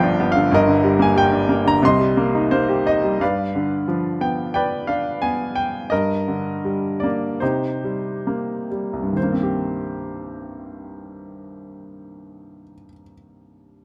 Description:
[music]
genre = classical, lyrical solo piano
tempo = 64-95 BPM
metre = 4/4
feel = rubato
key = C minor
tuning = A4 = 440 Hz
[part]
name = bright baby grand piano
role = solo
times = 0.0-13.8 s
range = G1 to C6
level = -21 LUFS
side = equal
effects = none
[sound]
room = little or no reverb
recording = close, detailed microphones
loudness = -20 LUFS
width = mono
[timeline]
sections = 0.0-3.2 A section; 3.2-9.2 B section; 9.2-12.8 C section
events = slowing down 3.2-9.2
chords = 0.0 G7; 0.5 Gm; 1.8 Cm7; 3.2 G7; 5.9 Ebmaj7/G; 7.4 Cm7

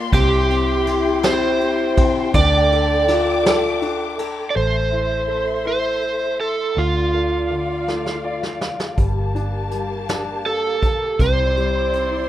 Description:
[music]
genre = six-eight pop ballad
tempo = 54 BPM (dotted quarters)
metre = 6/8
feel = straight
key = D minor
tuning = A4 = 441 Hz
[part]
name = clear concert grand piano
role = accompaniment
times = 0.0-12.3 s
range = C3 to F5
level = -28 LUFS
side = left 5 dB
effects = none
[part]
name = dark studio string section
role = sustained chords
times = 0.0-12.3 s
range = Bb3 to D6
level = -26 LUFS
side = left 2 dB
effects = none
[part]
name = vintage muted fingered electric bass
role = bass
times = 0.0-12.3 s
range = G1 to D2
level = -23 LUFS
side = equal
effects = none
[part]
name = overdriven slide guitar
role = melody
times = 0.1-12.3 s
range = F4 to D5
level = -20 LUFS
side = right 3 dB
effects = none
[part]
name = mellow French horn section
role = second line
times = 0.1-4.2 s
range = D4 to F4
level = -23 LUFS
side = left 6 dB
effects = none
[part]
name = vintage brush drum kit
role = drums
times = 0.1-4.4, 7.9-12.1 s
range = hi-hat, kick drum, ride cymbal, snare drum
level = -23 LUFS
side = equal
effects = none
[sound]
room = small room ambience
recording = rough home demo mix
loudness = -17 LUFS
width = side -12 dB against mid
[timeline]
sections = 0.0-4.6 A section; 4.6-12.3 B section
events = drum fill 7.9-9.0; grand piano fill 7.9-9.0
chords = 0.1 C5; 2.3 Dm; 4.6 Am; 6.8 Dm; 9.0 Gmadd9; 11.2 Cadd9

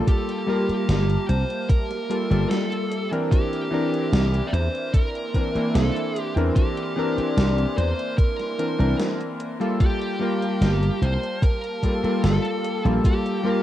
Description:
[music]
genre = vaporwave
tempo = 74 BPM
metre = 4/4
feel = straight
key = G dorian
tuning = A4 = 439 Hz
[part]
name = warm electric grand piano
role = accompaniment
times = 0.0-13.6 s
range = E3 to Bb4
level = -25 LUFS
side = left 1 dB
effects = analog chorus, vintage 12-bit sampler grit
[part]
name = warbly tape-like pad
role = sustained chords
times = 0.0-13.6 s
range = Bb3 to C6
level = -34 LUFS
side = equal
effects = chorus, built-in reverb, phaser, vintage 12-bit sampler grit
[part]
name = high-gain lead guitar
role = melody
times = 0.1-13.6 s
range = G4 to D5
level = -29 LUFS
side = right 2 dB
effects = distortion, tape echo
[part]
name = electronic kick drum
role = drums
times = 0.1-13.2 s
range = none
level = -20 LUFS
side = equal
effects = overdrive, vintage 12-bit sampler grit
[part]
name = gated 80s digital drum machine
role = drums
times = 0.1-13.4 s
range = hi-hat, snare drum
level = -29 LUFS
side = right 1 dB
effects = gated reverb, gated reverb snare, overdrive, vintage 12-bit sampler grit
[part]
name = slap bass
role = bass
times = 0.7-13.0 s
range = G1 to E2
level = -21 LUFS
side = equal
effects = none
[sound]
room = digital ambience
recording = rough home demo mix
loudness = -20 LUFS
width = side -12 dB against mid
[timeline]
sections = 0.0-13.6 A section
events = none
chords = 0.0 Gm9; 3.3 C9; 9.8 Gm9

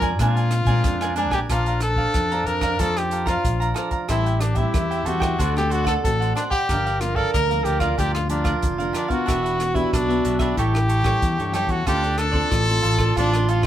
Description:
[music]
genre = samba and choro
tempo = 92 BPM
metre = 4/4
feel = straight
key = Bb major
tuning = A4 = 440 Hz
[part]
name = brilliant trumpet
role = melody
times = 0.0-13.7 s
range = D4 to Bb4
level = -24 LUFS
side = left 2 dB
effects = none
[part]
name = clear clarinet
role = second line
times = 0.0-13.7 s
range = D4 to Bb4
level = -29 LUFS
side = right 5 dB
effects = none
[part]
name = cavaquinho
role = accompaniment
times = 0.0-13.7 s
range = D4 to Bb5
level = -28 LUFS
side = right 4 dB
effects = none
[part]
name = nylon-string guitar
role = accompaniment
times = 0.0-13.7 s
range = G2 to C5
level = -30 LUFS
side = left 3 dB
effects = none
[part]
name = modern bright fingered electric bass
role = bass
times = 0.0-13.7 s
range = E1 to Bb2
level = -24 LUFS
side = equal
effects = none
[part]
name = compact cocktail drum kit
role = drums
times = 0.0-13.7 s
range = hi-hat, kick drum, rim click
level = -27 LUFS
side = equal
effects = none
[sound]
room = wet small room reverb, RT60 0.5 s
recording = band playing live in one room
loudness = -19 LUFS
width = side -11 dB against mid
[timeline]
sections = 0.0-1.5 A section; 1.5-13.7 B section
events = none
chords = 0.0 Bb9; 1.5 Bbmaj9; 4.1 Am7; 5.4 D7; 6.7 Gm7; 9.3 Em7; 10.6 A7; 11.9 Dm7

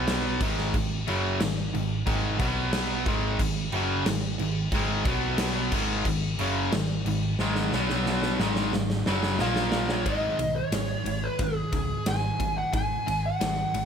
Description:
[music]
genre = hard rock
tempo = 90 BPM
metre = 4/4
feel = straight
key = G# minor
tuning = A4 = 444 Hz
[part]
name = cranked stack guitar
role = riff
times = 0.0-13.9 s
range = F#2 to B3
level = -32 LUFS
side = left 11 dB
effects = overdrive
[part]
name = cranked stack guitar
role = riff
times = 0.0-13.9 s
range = F#2 to B3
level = -31 LUFS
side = right 10 dB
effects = overdrive
[part]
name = distorted electric guitar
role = riff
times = 0.0-10.1 s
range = F#2 to B3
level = -33 LUFS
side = equal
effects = overdrive
[part]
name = hollow-body short-scale picked electric bass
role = bass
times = 0.0-13.9 s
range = F#1 to C#2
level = -32 LUFS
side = equal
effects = none
[part]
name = big rock drum kit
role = drums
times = 0.1-13.9 s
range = crash cymbal, kick drum, ride cymbal, snare drum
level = -30 LUFS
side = equal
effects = none
[part]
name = smooth overdriven lead guitar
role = melody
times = 9.4-13.9 s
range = G#4 to G#5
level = -29 LUFS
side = equal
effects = tape echo
[sound]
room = small room reverb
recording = none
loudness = -24 LUFS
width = side -7 dB against mid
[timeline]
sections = 0.0-10.1 A section; 10.1-13.9 B section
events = drum fill 7.4-10.1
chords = 0.4 G#5; 2.4 B5; 3.1 G#5; 5.1 B5; 5.7 G#5; 7.7 B5; 8.4 G#5; 9.4 A#5; 10.1 G#5

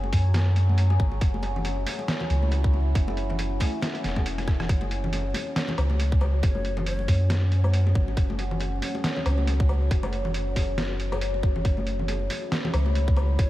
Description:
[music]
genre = deep dubstep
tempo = 138 BPM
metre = 4/4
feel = swing 57% on 16ths, half-time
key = unclear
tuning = A4 = 440 Hz
[part]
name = overtone-sweeping drone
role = sustained chords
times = 0.0-13.5 s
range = F#3 to G#4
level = -32 LUFS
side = left 1 dB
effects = chorus, built-in reverb, phaser
[part]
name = soft dub sub bass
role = bass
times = 0.0-13.5 s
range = E1 to F#2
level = -24 LUFS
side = equal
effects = none
[part]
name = congas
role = percussion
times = 0.0-13.5 s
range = none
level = -34 LUFS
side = left 2 dB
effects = dub echo
[part]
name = electronic kick drum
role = drums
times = 0.1-13.5 s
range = none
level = -22 LUFS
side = equal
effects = none
[part]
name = trip hop sampler-style drum kit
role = drums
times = 0.1-13.5 s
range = hi-hat, rim click, snare drum, woodblock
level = -32 LUFS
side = equal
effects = none
[part]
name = breathy mellow long shakuhachi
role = melody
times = 6.4-7.2, 13.4-13.5 s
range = C#5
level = -42 LUFS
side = equal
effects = none
[sound]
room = light reverb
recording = vinyl crackle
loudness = -22 LUFS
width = side -16 dB against mid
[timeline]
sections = 0.0-13.5 A section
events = drum fill 4.4-4.7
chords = 0.0 F#5

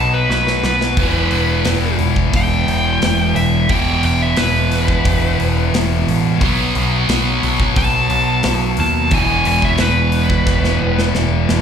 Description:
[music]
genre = quiet-loud alternative rock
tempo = 88 BPM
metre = 4/4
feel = straight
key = unclear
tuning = A4 = 440 Hz
[part]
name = dark smooth lead guitar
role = melody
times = 0.0-11.1 s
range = B4 to A5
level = -19 LUFS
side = right 1 dB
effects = overdrive, digital delay
[part]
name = twelve-string electric guitar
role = arpeggios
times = 0.0-1.0 s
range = F#3 to F#4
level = -27 LUFS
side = right 5 dB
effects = analog chorus, slapback echo, digital delay
[part]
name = tight distorted guitar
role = riff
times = 0.0-11.6 s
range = E2 to B3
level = -20 LUFS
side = left 11 dB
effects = distortion, slapback echo
[part]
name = growling picked electric bass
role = bass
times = 0.0-11.6 s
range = E1 to D#2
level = -19 LUFS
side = left 1 dB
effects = overdrive
[part]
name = big rock drum kit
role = drums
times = 0.3-11.6 s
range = hi-hat, kick drum, snare drum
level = -21 LUFS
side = equal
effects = none
[part]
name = sludgy distorted guitar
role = riff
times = 1.0-11.6 s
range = E2 to B3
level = -20 LUFS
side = right 11 dB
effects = overdrive
[sound]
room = small room ambience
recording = live gig heard through the venue's PA, club reverb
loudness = -13 LUFS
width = side -7 dB against mid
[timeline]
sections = 0.0-11.6 A section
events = lead electric guitar solo 0.0-11.6; drum fill 0.3-1.0, 10.5-11.6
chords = 0.0 B; 1.0 Em; 6.4 B5; 9.1 E5

